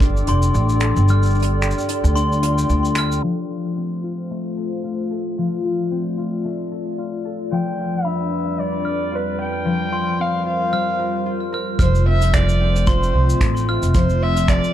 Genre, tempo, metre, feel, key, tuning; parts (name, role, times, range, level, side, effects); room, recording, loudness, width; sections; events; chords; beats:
folktronica; 112 BPM; 4/4; swing 56% on 16ths; F major; A4 = 438 Hz
warbly tape-like pad; sustained chords; 0.0-14.7 s; F2 to D6; -26 LUFS; equal; chorus, built-in reverb
concert harp; arpeggios; 0.0-14.7 s; F3 to B4; -24 LUFS; left 4 dB; low-pass filter, ping-pong delay
upright bass; bass; 0.0-3.2, 11.8-14.6 s; F1 to D2; -18 LUFS; right 1 dB
kick drum; drums; 0.0-0.1, 11.8-14.6 s; -18 LUFS; right 1 dB
soft brush drum kit; drums; 0.0-3.2, 11.8-14.7 s; cabasa, finger snaps, hi-hat; -28 LUFS; right 1 dB
glockenspiel with hard plastic mallets; second line; 0.3-3.2, 8.0-13.8 s; B5 to F6; -27 LUFS; left 2 dB; ping-pong delay
dark violin; melody; 7.5-14.7 s; B4 to G5; -24 LUFS; right 1 dB; ping-pong delay
light reverb, studio reverb; dark, warm production, low-pass filter; -17 LUFS; side -11 dB against mid
0.0-3.2 A section; 3.2-11.8 B section; 11.8-14.7 C section
kick drops out 1.1-3.2; filter sweep on harp 3.2-11.8; filter sweep on ambient pad 3.2-11.8; filter sweep 3.2-11.8
0.0 Gsus2; 3.2 F; 7.5 G/F; 9.7 C7sus4/F; 11.8 F
0.02 0.56 | 1.09 1.63 2.16 2.70 | 3.23 3.77 4.30 4.84 | 5.38 5.91 6.45 6.98 | 7.52 8.05 8.59 9.13 | 9.66 10.20 10.73 11.27 | 11.80 12.34 12.88 13.41 | 13.95 14.48